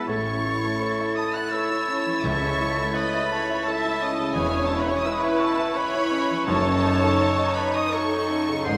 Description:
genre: classical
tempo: 84 BPM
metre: 3/4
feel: rubato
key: unclear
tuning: A4 = 440 Hz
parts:
  - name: clear studio violin section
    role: melody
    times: 0.0-8.8 s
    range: G#5 to F#6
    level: -35 LUFS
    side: equal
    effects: none
  - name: warm grand piano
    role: melody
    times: 0.0-8.8 s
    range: C#2 to C#6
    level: -30 LUFS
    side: equal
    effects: none
  - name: bright concert flute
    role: second line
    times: 0.0-8.8 s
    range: C#6 to B#6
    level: -33 LUFS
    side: equal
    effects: none
  - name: rich chamber violin section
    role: second line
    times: 0.0-8.8 s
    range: G#3 to E4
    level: -37 LUFS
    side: equal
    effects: none
  - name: warm clarinet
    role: second line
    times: 0.0-8.8 s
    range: D#4 to E4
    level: -34 LUFS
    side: equal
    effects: none
  - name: warm oboe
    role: second line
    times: 0.0-8.8 s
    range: G#4 to F#5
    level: -34 LUFS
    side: equal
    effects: none
  - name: rich studio viola section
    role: accompaniment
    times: 0.0-8.8 s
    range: G#4 to E5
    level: -32 LUFS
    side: equal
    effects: none
  - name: mellow French horn section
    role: sustained chords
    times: 0.0-8.8 s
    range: A3 to E4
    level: -34 LUFS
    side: equal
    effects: none
  - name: dark studio cello section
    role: bass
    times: 0.1-8.8 s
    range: C#2 to A2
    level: -37 LUFS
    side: equal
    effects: none
  - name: rich studio double bass section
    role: bass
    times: 0.1-8.8 s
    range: E1 to C#2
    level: -38 LUFS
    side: equal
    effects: none
  - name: warm tuba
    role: bass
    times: 0.1-8.8 s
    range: E1 to C#2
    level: -37 LUFS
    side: equal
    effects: none
  - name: timpani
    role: percussion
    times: 2.2-3.3 s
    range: none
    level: barely audible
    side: none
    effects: none
room: wet recital hall reverb, RT60 1.7 s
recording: none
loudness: -24 LUFS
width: mono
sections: 0.0-8.8 A section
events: none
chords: 0.1 A; 2.2 A/C#; 4.4 C#m/E; 6.5 D#m7b5/F#

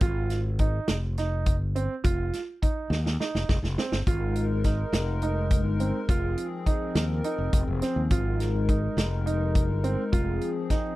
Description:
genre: progressive instrumental, band music in an uneven meter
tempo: 208 BPM (eighths)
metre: 7/8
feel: straight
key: Ab major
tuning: A4 = 440 Hz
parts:
  - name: warm grand piano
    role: arpeggios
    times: 0.0-11.0 s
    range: C4 to F4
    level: -32 LUFS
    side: right 5 dB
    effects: none
  - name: fretless electric bass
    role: bass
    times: 0.0-10.4 s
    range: F1 to Eb2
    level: -27 LUFS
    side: equal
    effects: none
  - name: vintage drum kit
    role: drums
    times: 0.0-10.8 s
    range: hi-hat, kick drum, snare drum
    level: -26 LUFS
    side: equal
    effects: none
  - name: hollow soft pad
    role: accompaniment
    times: 4.1-11.0 s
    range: F3 to Bb4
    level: -31 LUFS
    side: left 4 dB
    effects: chorus
room: little or no reverb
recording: dry, close 1970s-style studio recording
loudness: -24 LUFS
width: side -17 dB against mid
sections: 0.0-11.0 A section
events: drum fill 2.9-4.1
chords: 0.0 Ab5; 2.0 F5; 4.1 Absus2; 6.1 Fm; 8.1 Absus2; 10.1 Fm

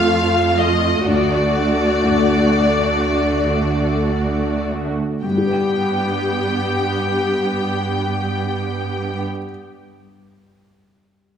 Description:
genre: cinematic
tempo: free time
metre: none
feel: none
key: unclear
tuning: A4 = 440 Hz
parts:
  - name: warm symphonic violin section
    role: melody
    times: 0.0-9.2 s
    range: D5 to G5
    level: -22 LUFS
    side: left 4 dB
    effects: none
  - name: clear symphonic viola section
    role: accompaniment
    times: 0.0-9.2 s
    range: A3 to G4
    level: -21 LUFS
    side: right 1 dB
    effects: none
  - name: felt-muted upright piano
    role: accompaniment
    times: 0.0-11.4 s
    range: D2 to G5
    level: -24 LUFS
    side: left 2 dB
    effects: none
  - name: clear symphonic cello section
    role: bass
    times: 0.0-9.2 s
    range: D2 to G2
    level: -22 LUFS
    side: right 3 dB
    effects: none
room: wet concert hall reverb, RT60 2.1 s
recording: none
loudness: -16 LUFS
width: side -8 dB against mid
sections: 0.0-5.2 A section; 5.2-9.8 B section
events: slowing down 0.0-5.2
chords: 0.0 F; 1.1 D; 5.2 G

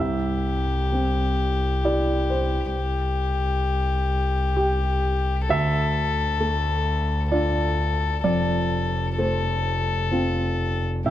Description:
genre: neoclassical piano and strings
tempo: 65 BPM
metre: 3/4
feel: rubato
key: C major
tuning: A4 = 440 Hz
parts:
  - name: warm violin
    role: melody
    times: 0.0-11.1 s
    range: G4 to A4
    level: -27 LUFS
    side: left 6 dB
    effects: none
  - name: warm grand piano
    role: accompaniment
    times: 0.0-11.1 s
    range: C2 to E5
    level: -25 LUFS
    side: right 1 dB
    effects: none
  - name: warm double bass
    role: bass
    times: 0.0-11.1 s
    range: F1 to D2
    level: -25 LUFS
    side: equal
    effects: none
room: light reverb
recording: dark, warm production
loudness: -21 LUFS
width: side -12 dB against mid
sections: 0.0-11.1 A section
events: none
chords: 0.0 C; 5.5 Dm; 8.2 F

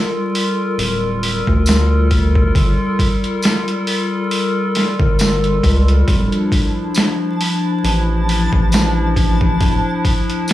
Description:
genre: trip hop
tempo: 68 BPM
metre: 4/4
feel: swing 56% on 16ths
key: unclear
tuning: A4 = 440 Hz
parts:
  - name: warbly tape-like pad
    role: sustained chords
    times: 0.0-10.5 s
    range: F3 to Bb4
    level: -19 LUFS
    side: left 2 dB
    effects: chorus, built-in reverb
  - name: boom bap sampler-style drum kit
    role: drums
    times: 0.3-10.5 s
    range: hi-hat, kick drum, snare drum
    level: -17 LUFS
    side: equal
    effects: overdrive
  - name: round analog bass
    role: bass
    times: 0.8-9.8 s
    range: D1 to D2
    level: -16 LUFS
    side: equal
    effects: none
  - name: tambourine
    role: percussion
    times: 1.7-10.5 s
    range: none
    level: -26 LUFS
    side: right 1 dB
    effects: none
  - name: backwards swelling texture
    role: texture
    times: 6.5-10.5 s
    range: A5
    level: -27 LUFS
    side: right 2 dB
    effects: built-in reverb
room: digital ambience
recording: dry, gritty hardware recording, vinyl crackle, studio reverb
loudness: -14 LUFS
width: side -14 dB against mid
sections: 0.0-10.5 A section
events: none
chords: 0.0 Gm9; 6.1 Dmadd9

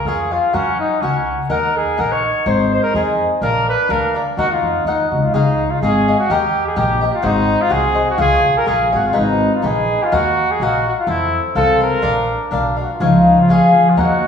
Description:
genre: mexican folk, mariachi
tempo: 125 BPM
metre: 2/4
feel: swing 54% on 8ths, rubato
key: Eb minor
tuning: A4 = 440 Hz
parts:
  - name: mellow trumpet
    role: melody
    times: 0.0-14.3 s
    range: Db4 to Db5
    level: -18 LUFS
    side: equal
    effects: none
  - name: cavaquinho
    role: accompaniment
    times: 0.0-14.3 s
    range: D4 to G5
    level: -18 LUFS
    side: left 2 dB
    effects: none
  - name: upright bass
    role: bass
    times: 0.1-14.3 s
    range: Ab1 to Gb2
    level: -20 LUFS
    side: left 1 dB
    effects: none
  - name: concert harp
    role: arpeggios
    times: 13.0-14.3 s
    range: F3 to F5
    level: -12 LUFS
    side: equal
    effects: slapback echo
room: wet recital hall reverb, RT60 1.3 s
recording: heard from further back in the room, small room ambience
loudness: -13 LUFS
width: side -7 dB against mid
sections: 0.0-5.3 A section; 5.3-14.3 B section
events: none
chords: 0.0 Db; 0.5 Gb; 1.5 Ebm; 2.5 Ab; 3.4 Bb; 4.4 Ebm; 5.3 Dbadd9; 6.3 Eb; 7.2 Ab7; 8.2 Db; 9.2 Abm; 10.1 Ebmadd9; 11.1 F; 12.0 Bb; 13.0 Db

